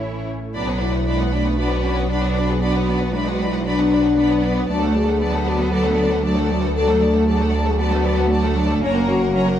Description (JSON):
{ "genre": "cinematic, hybrid orchestral and electronic film score", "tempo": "116 BPM", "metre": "4/4", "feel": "straight", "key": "B dorian", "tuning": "A4 = 442 Hz", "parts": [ { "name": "warm symphonic violin section", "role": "melody", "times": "0.0-9.6 s", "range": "C#5 to B5", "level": "-30 LUFS", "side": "left 2 dB", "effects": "none" }, { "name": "warm symphonic violin section", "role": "second line", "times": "0.0-9.6 s", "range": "C#4 to D5", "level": "-28 LUFS", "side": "left 1 dB", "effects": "none" }, { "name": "warm symphonic viola section", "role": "accompaniment", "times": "0.0-9.6 s", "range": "E3 to D4", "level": "-27 LUFS", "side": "right 1 dB", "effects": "none" }, { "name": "soft additive organ-like pad", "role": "sustained chords", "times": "0.0-9.6 s", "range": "F#3 to B4", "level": "-26 LUFS", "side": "equal", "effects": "ensemble chorus, built-in reverb" }, { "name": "clear symphonic double bass section", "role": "bass", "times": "0.0-9.6 s", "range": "F#1 to D2", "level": "-23 LUFS", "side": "right 2 dB", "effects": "none" }, { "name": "rich symphonic cello section", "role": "bass", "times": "0.0-9.6 s", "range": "F#3 to E4", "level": "-25 LUFS", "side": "right 2 dB", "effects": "none" }, { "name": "dark French horn section", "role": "sustained chords", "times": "0.6-9.6 s", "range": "B3 to B4", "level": "-22 LUFS", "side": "left 4 dB", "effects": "none" } ], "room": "wet recital hall reverb, RT60 1.8 s", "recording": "none", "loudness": "-17 LUFS", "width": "side -10 dB against mid", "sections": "0.5-9.6 A section", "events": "none", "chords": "0.0 A; 0.5 Bm; 4.7 D; 8.8 F#", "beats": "0.03 | 0.55 1.07 1.58 2.10 | 2.62 3.13 3.65 4.17 | 4.69 5.20 5.72 6.24 | 6.76 7.27 7.79 8.31 | 8.82 9.34" }